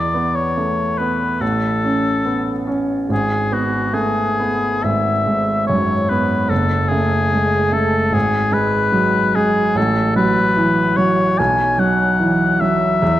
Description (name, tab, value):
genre	classical, romantic duo for oboe and grand piano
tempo	73 BPM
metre	4/4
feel	rubato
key	E major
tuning	A4 = 442 Hz
part	clear oboe	melody	0.0-13.2 s	F#4 to G#5	-18 LUFS	left 2 dB	none
part	clear baby grand piano	accompaniment	0.0-13.2 s	F#1 to C#4	-17 LUFS	right 2 dB	none
room	moderate scoring stage reverb, RT60 2.1 s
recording	dark, warm production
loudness	-15 LUFS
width	side -13 dB against mid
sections	0.0-13.2 A section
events	none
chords	0.0 E5; 1.4 A; 3.1 E/G#; 6.5 F#madd9; 8.1 G#m7; 9.8 F#m7/A; 11.4 B5